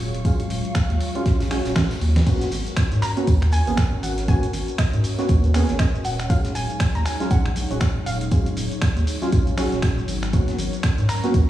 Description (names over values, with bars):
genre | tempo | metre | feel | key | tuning
deep house | 119 BPM | 4/4 | swing 58% on 16ths | unclear | A4 = 440 Hz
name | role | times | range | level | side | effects
airy breathy pad | sustained chords | 0.0-11.5 s | F#3 to C#5 | -31 LUFS | left 2 dB | chorus, sidechain pumping
round analog bass | bass | 0.0-11.5 s | D#1 to G#2 | -22 LUFS | equal | sidechain pumping
dusty soul sampler-style drum kit | drums | 0.0-11.5 s | crash cymbal, finger snaps, hi-hat, shaker, snare drum | -30 LUFS | right 1 dB | none
loose indie drum kit | drums | 0.0-11.5 s | hi-hat, snare drum, tambourine | -40 LUFS | left 1 dB | sidechain pumping on hats, high-pass filter on hats, high-pass filter on snare, sidechain pumping on perc, high-pass filter on perc, high-pass filter on room
warbly tape-like pad | texture | 0.0-2.3 s | G#4 to E#5 | -38 LUFS | right 2 dB | chorus, built-in reverb, sidechain pumping
warm symphonic violin section | texture | 0.0-2.3 s | C#6 | -45 LUFS | equal | sidechain pumping
percussive organ stab | stabs | 0.2-11.4 s | F#3 to G#4 | -27 LUFS | right 2 dB | ensemble chorus, sidechain pumping, digital delay
electronic kick drum | drums | 0.2-11.5 s | none | -19 LUFS | equal | none
soft round pluck | melody | 3.0-11.5 s | D#5 to A#5 | -31 LUFS | right 1 dB | chorus, digital delay
room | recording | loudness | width
light reverb, small room ambience | played on a big sound system in a bare room, stone room reverb, studio reverb | -19 LUFS | side -13 dB against mid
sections
0.0-2.3 A section; 2.3-11.5 B section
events
drum fill 1.8-2.3; drop 2.3-11.5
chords
0.0 D#m11; 2.3 G#m11; 6.3 D#m11; 10.3 G#m11